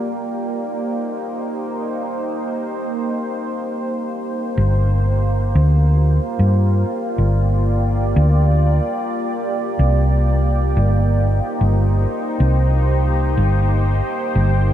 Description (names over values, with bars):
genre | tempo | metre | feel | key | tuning
ambient dub | 92 BPM | 4/4 | swing 57% on 16ths | G minor | A4 = 440 Hz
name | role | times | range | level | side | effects
deep dark ambient pad | sustained chords | 0.0-14.7 s | Bb3 to G5 | -22 LUFS | right 1 dB | chorus, built-in reverb
hollow-body short-scale fingered electric bass | bass | 4.6-14.7 s | G1 to G2 | -15 LUFS | equal | none
room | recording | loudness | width
light reverb | none | -16 LUFS | side -11 dB against mid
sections
0.0-4.6 A section; 4.6-14.7 B section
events
none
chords
0.0 Cm7; 4.6 Gm7; 9.8 Cm7